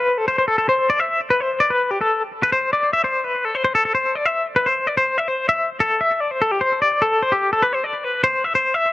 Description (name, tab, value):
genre	rock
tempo	147 BPM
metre	4/4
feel	straight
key	A minor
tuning	A4 = 442 Hz
part	twangy electric guitar	solo	0.0-8.9 s	G4 to E5	-17 LUFS	left 2 dB	tremolo, tape echo
room	light reverb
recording	dry, close 1970s-style studio recording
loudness	-17 LUFS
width	side -16 dB against mid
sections	0.0-5.0 A section; 5.0-8.9 B section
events	none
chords	none